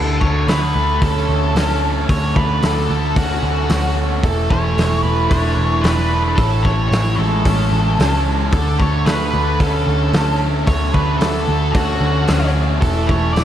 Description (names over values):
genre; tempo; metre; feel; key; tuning
rock, shoegaze and dream pop; 112 BPM; 4/4; straight; D lydian; A4 = 440 Hz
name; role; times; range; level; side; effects
octave-fuzz lead guitar; melody; 0.0-13.4 s; F#4 to D5; -22 LUFS; equal; distortion, analog delay
fuzz guitar; riff; 0.0-13.4 s; A2 to D4; -20 LUFS; right 1 dB; distortion, lush chorus
vintage muted picked electric bass; bass; 0.0-13.4 s; E1 to D2; -18 LUFS; equal; none
loose indie drum kit; drums; 0.2-13.4 s; hi-hat, kick drum, snare drum; -21 LUFS; equal; none
room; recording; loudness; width
wet lush hall reverb, RT60 1.7 s, small room ambience; dreamy mix soaked in reverb; -14 LUFS; side -10 dB against mid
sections
0.0-13.4 A section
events
none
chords
0.0 Dmaj7(no3); 4.2 E7sus4; 6.4 Amaj7; 8.5 Dmaj7(no3); 12.8 Esus4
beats
0.49 1.02 1.56 | 2.09 2.63 3.17 3.70 | 4.24 4.77 5.31 5.84 | 6.38 6.92 7.45 7.99 | 8.53 9.06 9.60 10.14 | 10.68 11.21 11.75 12.29 | 12.82 13.36